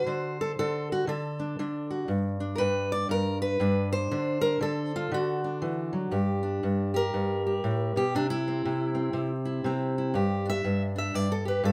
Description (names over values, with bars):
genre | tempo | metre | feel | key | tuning
acoustic country blues, solo or duo | 119 BPM | 4/4 | swing 62% on 8ths | unclear | A4 = 440 Hz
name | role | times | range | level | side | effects
fingerpicked steel-string acoustic guitar | solo | 0.0-11.7 s | G2 to E5 | -28 LUFS | equal | none
room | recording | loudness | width
light reverb | none | -29 LUFS | mono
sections
0.0-6.1 A section; 6.1-11.7 B section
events
steel-string acoustic guitar solo 6.1-11.7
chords
0.0 D; 2.1 G; 4.1 D; 6.1 G5; 8.1 C; 10.1 G5